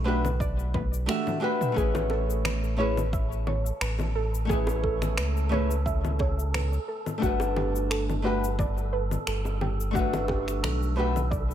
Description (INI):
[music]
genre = sunset chillout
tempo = 88 BPM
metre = 4/4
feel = swing 54% on 16ths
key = A major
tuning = A4 = 440 Hz
[part]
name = nylon-string guitar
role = accompaniment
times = 0.0-11.2 s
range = G3 to G#5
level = -30 LUFS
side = moving between left 5 dB and right 2 dB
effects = auto-pan, ping-pong delay
[part]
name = soft round pluck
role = arpeggios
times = 0.0-11.5 s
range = F#4 to E5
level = -34 LUFS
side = right 3 dB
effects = wide subtle chorus, cassette tape, ping-pong delay
[part]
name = round analog bass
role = bass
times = 0.0-11.5 s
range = G1 to C#2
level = -28 LUFS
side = equal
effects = none
[part]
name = deep house drum kit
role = drums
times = 0.2-11.5 s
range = cabasa, congas, finger snaps, toms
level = -33 LUFS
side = left 2 dB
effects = overdrive
[part]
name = electronic kick drum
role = drums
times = 0.4-11.5 s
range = none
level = -30 LUFS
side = equal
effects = overdrive
[part]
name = wind-like tuned noise texture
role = texture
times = 2.7-11.5 s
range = A4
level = -39 LUFS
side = right 5 dB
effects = built-in reverb
[part]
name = bongos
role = percussion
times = 1.9-10.4 s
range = none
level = -37 LUFS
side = right 2 dB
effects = none
[sound]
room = light reverb, digital ambience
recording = none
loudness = -24 LUFS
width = side -10 dB against mid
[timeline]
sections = 0.0-11.5 A section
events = drum fill 0.7-1.8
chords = 0.0 Gmaj9; 1.8 Amaj9; 7.2 Gmaj9